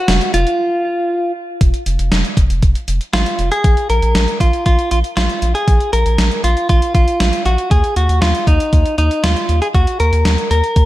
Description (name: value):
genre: synth-pop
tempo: 118 BPM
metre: 4/4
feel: straight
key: unclear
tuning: A4 = 437 Hz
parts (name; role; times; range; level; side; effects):
- direct-recorded clean electric guitar; melody; 0.0-10.9 s; Eb4 to Bb4; -17 LUFS; equal; tape echo
- round analog bass; bass; 0.1-10.9 s; F1 to Eb2; -15 LUFS; equal; none
- gated 80s digital drum machine; drums; 0.1-10.9 s; hi-hat, kick drum, snare drum; -16 LUFS; equal; gated reverb, gated reverb snare
room: light reverb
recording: none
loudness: -13 LUFS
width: side -16 dB against mid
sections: 0.0-1.6 A section; 1.6-3.6 B section; 3.6-10.9 C section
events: break 0.6-1.6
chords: 0.0 N.C.; 3.6 Bb5; 7.7 Eb5